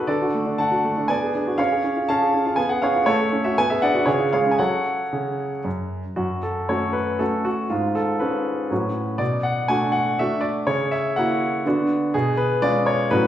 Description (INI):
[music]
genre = classical-period piano sonatina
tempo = 121 BPM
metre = 3/4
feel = rubato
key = F# minor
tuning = A4 = 440 Hz
[part]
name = clear grand piano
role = solo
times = 0.0-13.3 s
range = F#2 to A5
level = -19 LUFS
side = equal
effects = none
[sound]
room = wet recital hall reverb, RT60 1.3 s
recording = heard from further back in the room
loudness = -19 LUFS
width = side -11 dB against mid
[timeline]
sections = 0.0-6.2 A section; 6.2-13.3 B section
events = none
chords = 0.1 D; 1.1 G#m7b5/B; 1.6 C#; 2.6 C#7/B; 3.1 F#m/A; 3.6 G#m7b5/B; 4.1 C#; 4.6 F#m; 7.7 C#7/G#; 8.7 F#m/A; 9.2 Bm7; 10.7 F#7/C#; 11.7 Bm/D; 12.1 C#7/B